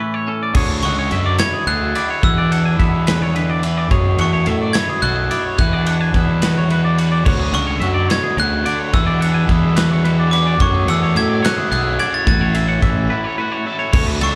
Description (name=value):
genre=math rock and midwest emo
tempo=72 BPM (dotted quarters)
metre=6/8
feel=straight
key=D lydian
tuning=A4 = 440 Hz
part: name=glockenspiel with hard plastic mallets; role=melody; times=0.0-14.4 s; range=C#6 to A6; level=-25 LUFS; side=equal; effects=slapback echo
part: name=twangy electric guitar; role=accompaniment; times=0.0-14.4 s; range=F#2 to G#4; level=-27 LUFS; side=equal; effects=slapback echo
part: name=twangy electric guitar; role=arpeggios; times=0.0-14.4 s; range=G#4 to G#5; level=-26 LUFS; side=equal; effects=slapback echo
part: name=fuzz fingered electric bass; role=bass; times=0.5-14.4 s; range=A1 to A2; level=-20 LUFS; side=equal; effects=overdrive
part: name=modern studio drum kit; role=drums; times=0.5-14.3 s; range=crash cymbal, kick drum, ride cymbal, snare drum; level=-23 LUFS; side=equal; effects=none
part: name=biting overdriven guitar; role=riff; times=7.2-14.4 s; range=E3 to A4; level=-30 LUFS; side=equal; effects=harmonic tremolo, slapback echo
room=small room ambience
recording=live gig heard through the venue's PA, club reverb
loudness=-17 LUFS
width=mono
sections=0.6-13.9 A section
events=break 0.0-0.6, 13.1-13.9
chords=0.0 Amaj9; 0.6 Dmaj9#11; 2.2 E7sus2; 3.9 F#m11; 5.6 E7sus2; 7.3 Dmaj9#11; 8.9 E9; 10.6 F#m11; 12.3 A69